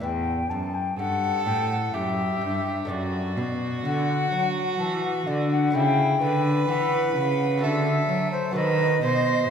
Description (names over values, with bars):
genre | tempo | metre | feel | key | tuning
classical, baroque-style sonata movement with continuo | 63 BPM | 3/4 | straight | unclear | A4 = 440 Hz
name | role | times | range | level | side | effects
mellow silver concert flute | melody | 0.0-9.5 s | C5 to A5 | -27 LUFS | left 5 dB | none
lute | accompaniment | 0.0-9.5 s | E2 to D5 | -33 LUFS | left 2 dB | none
rich cello | bass | 0.0-9.5 s | E2 to F#3 | -26 LUFS | right 1 dB | none
warm violin | second line | 1.0-9.5 s | E4 to C5 | -27 LUFS | right 2 dB | none
room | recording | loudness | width
wet scoring stage reverb, RT60 1.9 s | heard from further back in the room | -22 LUFS | side -7 dB against mid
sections
0.0-9.5 A section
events
none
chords
0.0 Em; 2.9 D/F#; 5.7 A/C#; 7.6 D; 8.6 B7